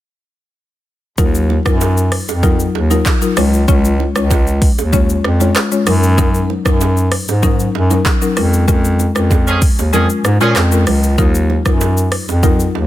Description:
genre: afrobeats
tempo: 96 BPM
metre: 4/4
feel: straight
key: unclear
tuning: A4 = 440 Hz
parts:
  - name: buzzing marimba with medium mallets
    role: accompaniment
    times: 1.2-12.6 s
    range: Gb3 to Db5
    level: -18 LUFS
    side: left 5 dB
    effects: none
  - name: mellow bass clarinet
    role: bass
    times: 1.2-12.9 s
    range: Db2 to Bb2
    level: -14 LUFS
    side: equal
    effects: none
  - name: afro-pop drum kit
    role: drums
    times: 1.2-12.7 s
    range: handclaps, hi-hat, kick drum, rim click, shaker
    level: -16 LUFS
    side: equal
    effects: none
  - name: congas and bongos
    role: percussion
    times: 1.2-12.9 s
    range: none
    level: -25 LUFS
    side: right 10 dB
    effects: none
  - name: clear horn section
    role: second line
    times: 9.5-10.6 s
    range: F3 to Ab4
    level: -19 LUFS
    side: right 2 dB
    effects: none
room: studio reverb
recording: dense, heavily limited modern master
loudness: -11 LUFS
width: side -14 dB against mid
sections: 1.2-12.9 A section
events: band accent 8.7-11.2; kick muted 9.9-11.2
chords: 1.2 Ebmadd9; 3.4 Db; 5.9 Gb6; 8.4 Bbm7/F; 11.2 Ebmadd9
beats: | 1.18 1.81 2.43 3.06 | 3.68 4.31 4.93 5.56 | 6.18 6.81 7.43 8.06 | 8.68 9.31 9.93 10.56 | 11.18 11.81 12.43

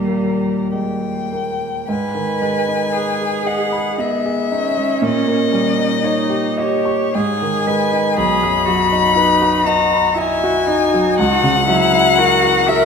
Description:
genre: classical, slow romantic movement for piano trio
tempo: 58 BPM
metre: 3/4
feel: uneven beats, rubato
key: G# minor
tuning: A4 = 436 Hz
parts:
  - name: rich violin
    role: melody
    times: 0.0-12.8 s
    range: A#4 to B5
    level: -18 LUFS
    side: left 7 dB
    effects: none
  - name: rich cello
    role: second line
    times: 0.0-12.8 s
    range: G3 to B4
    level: -20 LUFS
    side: right 3 dB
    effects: none
  - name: clear grand piano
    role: accompaniment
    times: 0.0-12.8 s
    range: B1 to C#6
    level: -18 LUFS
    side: right 1 dB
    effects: none
room: wet concert hall reverb, RT60 1.8 s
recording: none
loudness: -14 LUFS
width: side -6 dB against mid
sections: 0.0-1.9 A section; 1.9-12.8 B section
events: none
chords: 0.0 D#; 1.9 G#m; 5.0 D#7/A#; 7.2 G#m; 8.2 B; 11.2 F#7/C#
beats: 0.74 | 1.90 2.95 4.00 | 5.04 6.05 7.15 | 8.18 9.17 10.17 | 11.19 12.19

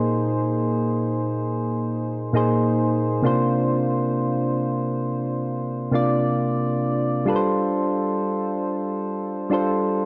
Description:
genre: R&B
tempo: 67 BPM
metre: 4/4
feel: swing 58% on 16ths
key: G phrygian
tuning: A4 = 440 Hz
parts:
  - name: soft electric-piano-like synth keys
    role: solo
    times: 0.0-10.1 s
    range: Bb2 to D5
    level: -23 LUFS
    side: equal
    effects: chorus
room: light reverb, digital ambience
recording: none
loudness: -23 LUFS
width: mono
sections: 0.0-7.3 A section; 7.3-10.1 B section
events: none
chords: 0.0 Bb9sus4; 3.2 C9sus4; 7.3 G9sus4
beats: | 0.10 1.00 1.90 2.79 | 3.69 4.58 5.48 6.37 | 7.27 8.16 9.06 9.96

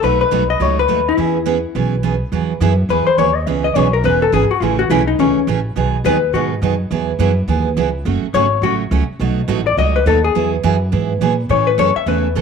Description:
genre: country, western swing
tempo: 209 BPM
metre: 4/4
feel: swing 60% on 8ths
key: E major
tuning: A4 = 441 Hz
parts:
  - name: vintage hollow-body jazz guitar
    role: melody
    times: 0.0-12.4 s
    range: C#4 to E5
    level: -16 LUFS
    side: left 9 dB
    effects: slapback echo
  - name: picked steel-string acoustic guitar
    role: accompaniment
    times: 0.0-12.4 s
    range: B2 to A4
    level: -19 LUFS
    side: right 11 dB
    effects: none
  - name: upright bass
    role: bass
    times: 0.0-12.4 s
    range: E1 to A#2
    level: -19 LUFS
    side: equal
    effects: none
room: moderate spring reverb, RT60 1.2 s, small room ambience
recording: 1960s-style stereo with parts hard left and right, faint mains hum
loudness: -14 LUFS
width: side -6 dB against mid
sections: 0.0-2.3 A section; 2.3-12.4 B section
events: hollow-body jazz guitar solo 2.3-12.4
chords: 0.0 B7; 1.2 E6; 2.3 Eadd9; 3.5 C#m7; 4.6 Amaj7; 5.8 B6; 6.9 Eadd9; 8.1 F#m; 9.2 B7; 10.4 Eadd9; 11.5 A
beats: | 0.03 0.31 0.60 0.89 | 1.17 1.46 1.75 2.03 | 2.32 2.60 2.89 3.18 | 3.46 3.75 4.04 4.33 | 4.61 4.90 5.19 5.47 | 5.76 6.05 6.33 6.62 | 6.91 7.20 7.48 7.77 | 8.06 8.35 8.63 8.92 | 9.21 9.49 9.78 10.07 | 10.35 10.64 10.93 11.21 | 11.50 11.79 12.07 12.36

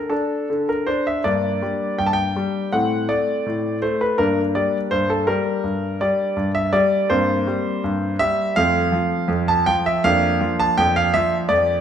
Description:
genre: classical-period piano sonatina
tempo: 82 BPM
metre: 4/4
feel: rubato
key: F major from 7.1 s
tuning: A4 = 438 Hz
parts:
  - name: clear grand piano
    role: solo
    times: 0.0-11.8 s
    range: F2 to A5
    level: -18 LUFS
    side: equal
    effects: none
room: moderate recital hall reverb, RT60 1.6 s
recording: minimal, uncompressed stereo recording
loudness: -18 LUFS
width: side -8 dB against mid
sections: 0.0-11.8 A section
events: none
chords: 0.0 D5; 1.2 Gm; 2.7 Amadd11; 4.2 Gm; 7.1 C5/G; 8.6 F; 10.0 Bb/F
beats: 0.49 | 1.24 1.98 2.71 3.45 | 4.18 4.91 5.64 6.36 | 7.10 7.83 8.56 9.28 | 10.02 10.77 11.50

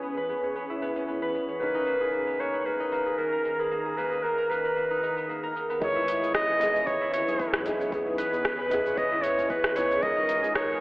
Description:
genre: organic downtempo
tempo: 114 BPM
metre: 4/4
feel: swing 54% on 16ths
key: C# dorian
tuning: A4 = 442 Hz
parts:
  - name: felt-muted upright piano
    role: accompaniment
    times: 0.0-10.8 s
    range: C#3 to D#5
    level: -34 LUFS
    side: equal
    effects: analog chorus, sidechain pumping, analog delay
  - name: ethereal airy pad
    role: sustained chords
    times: 0.0-10.8 s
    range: C#2 to A#5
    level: -36 LUFS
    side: equal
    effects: ensemble chorus, built-in reverb, sidechain pumping
  - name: concert harp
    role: arpeggios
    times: 0.0-10.8 s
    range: A#3 to C#5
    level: -31 LUFS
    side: equal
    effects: low-pass filter, analog delay
  - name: afro-pop drum kit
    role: drums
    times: 0.0-10.7 s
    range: hi-hat, rim click, shaker, toms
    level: -31 LUFS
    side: equal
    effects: low-pass filter on perc, low-pass filter on hats, low-pass filter on snare, low-pass filter on toms, low-pass filter on room
  - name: warm clarinet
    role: melody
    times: 1.6-10.8 s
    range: G#4 to D#5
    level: -27 LUFS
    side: equal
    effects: analog delay
  - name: round analog bass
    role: bass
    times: 5.8-10.8 s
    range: G#1 to E2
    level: -43 LUFS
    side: equal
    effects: sidechain pumping
  - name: electronic kick drum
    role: drums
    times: 5.8-10.7 s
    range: none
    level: -39 LUFS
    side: equal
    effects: none
room: wet lush hall reverb, RT60 1.8 s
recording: dreamy mix soaked in reverb, telephone sound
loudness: -24 LUFS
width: side -21 dB against mid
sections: 0.0-5.8 A section; 5.8-10.8 B section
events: none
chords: 0.0 C#m7; 1.6 G#madd9/C#; 5.8 C#m7; 10.0 G#madd9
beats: 0.03 0.56 1.08 | 1.61 2.13 2.66 3.19 | 3.71 4.24 4.77 5.29 | 5.82 6.35 6.87 7.40 | 7.92 8.45 8.98 9.50 | 10.03 10.56

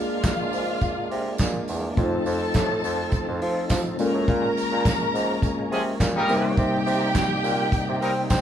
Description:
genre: disco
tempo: 104 BPM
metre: 4/4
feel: straight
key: unclear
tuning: A4 = 441 Hz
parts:
  - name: warm studio string section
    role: second line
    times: 0.0-8.4 s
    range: F4 to Bb5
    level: -28 LUFS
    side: equal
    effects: none
  - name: mellow tine electric piano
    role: accompaniment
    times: 0.0-8.4 s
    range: G3 to D5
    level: -29 LUFS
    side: left 3 dB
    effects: medium stereo tremolo
  - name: overdriven tonewheel organ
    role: sustained chords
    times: 0.0-8.4 s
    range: C3 to A4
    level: -30 LUFS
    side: right 1 dB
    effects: chorus vibrato, slow rotary speaker
  - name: warm soul drum kit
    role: drums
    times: 0.2-8.4 s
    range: handclaps, hi-hat, kick drum, snare drum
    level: -26 LUFS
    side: equal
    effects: none
  - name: tambourine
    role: percussion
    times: 0.2-8.4 s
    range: none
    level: -40 LUFS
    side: right 6 dB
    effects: none
  - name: clear bassoon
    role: bass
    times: 0.5-8.4 s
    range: E2 to C4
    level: -28 LUFS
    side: right 1 dB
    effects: none
  - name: clear horn section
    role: stabs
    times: 5.7-8.1 s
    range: F3 to Bb4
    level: -26 LUFS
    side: equal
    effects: none
room: moderate large studio reverb, RT60 1.3 s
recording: band playing live in one room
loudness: -21 LUFS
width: side -10 dB against mid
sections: 0.0-8.4 A section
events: none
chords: 0.0 Bb7; 2.0 F7; 4.0 Bbm7; 6.3 Cm7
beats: 0.24 0.82 1.39 | 1.97 2.55 3.12 3.70 | 4.28 4.86 5.43 6.01 | 6.58 7.16 7.74 8.31

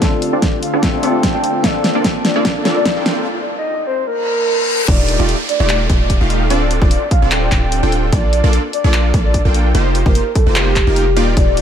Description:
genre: future bass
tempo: 148 BPM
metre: 4/4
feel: swing 54% on 16ths, half-time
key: Bb major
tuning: A4 = 440 Hz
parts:
  - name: bell-like tine electric piano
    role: accompaniment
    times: 0.0-3.3 s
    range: A3 to A4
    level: -22 LUFS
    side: left 4 dB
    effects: analog chorus, sidechain pumping, tape echo
  - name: airy breathy pad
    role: sustained chords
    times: 0.0-3.2 s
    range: D3 to A4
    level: -28 LUFS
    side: right 2 dB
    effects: none
  - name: supersaw stab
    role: riff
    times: 0.0-11.6 s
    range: A3 to G5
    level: -19 LUFS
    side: right 1 dB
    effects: sidechain pumping, low-pass filter
  - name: warm 808-style bass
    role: bass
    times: 0.0-11.6 s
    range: D1 to Bb1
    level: -16 LUFS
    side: equal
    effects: sidechain pumping, high-pass filter
  - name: big-room dance drum kit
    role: drums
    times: 0.0-11.6 s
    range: crash cymbal, handclaps, hi-hat, snare drum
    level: -20 LUFS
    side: equal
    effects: none
  - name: electronic kick drum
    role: drums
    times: 0.0-11.5 s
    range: none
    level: -16 LUFS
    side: equal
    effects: none
  - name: riser, reverse cymbal and downlifter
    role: sound effects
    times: 1.0-8.1 s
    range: none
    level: -25 LUFS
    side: left 1 dB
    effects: none
  - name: soft octave-layered synth lead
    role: melody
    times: 0.3-11.6 s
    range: G4 to G5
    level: -21 LUFS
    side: equal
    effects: chorus, phaser, sidechain pumping, tape echo
room: light reverb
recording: high-pass filter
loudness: -12 LUFS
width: side -9 dB against mid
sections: 0.0-4.9 A section; 4.9-11.6 B section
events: build-up 0.0-4.9; drum fill 0.0-3.3; filter sweep on supersaw synth 0.0-4.9; filter sweep 0.0-4.9; break 3.3-4.9; reverse cymbal 4.2-4.9; drop 4.9-11.6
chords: 0.0 Dm7; 1.6 Bbmaj7; 3.3 N.C.; 4.9 Ebmaj9#11; 6.5 Dm7; 8.1 Bbmaj7; 9.7 F9sus4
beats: | 0.02 0.42 0.83 1.23 | 1.64 2.04 2.45 2.85 | 3.26 3.67 4.07 4.48 | 4.88 5.29 5.69 6.10 | 6.50 6.91 7.31 7.72 | 8.12 8.53 8.94 9.34 | 9.75 10.15 10.56 10.96 | 11.37

